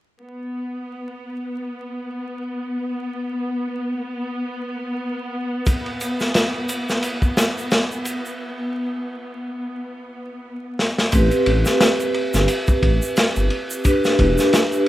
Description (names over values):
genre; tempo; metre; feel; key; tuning
trip hop; 88 BPM; 4/4; swing 57% on 16ths; A minor; A4 = 442 Hz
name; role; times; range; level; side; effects
warm studio string section; sustained chords; 0.2-11.1 s; B3; -27 LUFS; equal; vintage 12-bit sampler grit
crunchy breakbeat drum kit; drums; 5.7-14.9 s; kick drum, ride cymbal, snare drum; -20 LUFS; equal; none
tube shaker; percussion; 5.7-14.8 s; none; -34 LUFS; right 4 dB; none
vibraphone with medium hard mallets; accompaniment; 11.1-14.9 s; C4 to B4; -19 LUFS; right 1 dB; tremolo, tape echo
dark detuned saw bass; bass; 11.1-14.4 s; E1 to A1; -18 LUFS; equal; none
room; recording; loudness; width
small room ambience; rough home demo mix, vinyl crackle; -19 LUFS; side -14 dB against mid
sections
0.2-11.1 A section; 11.1-14.9 B section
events
break 8.4-11.1; drum fill 10.8-11.1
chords
0.2 N.C.; 11.1 Am7; 13.8 Em7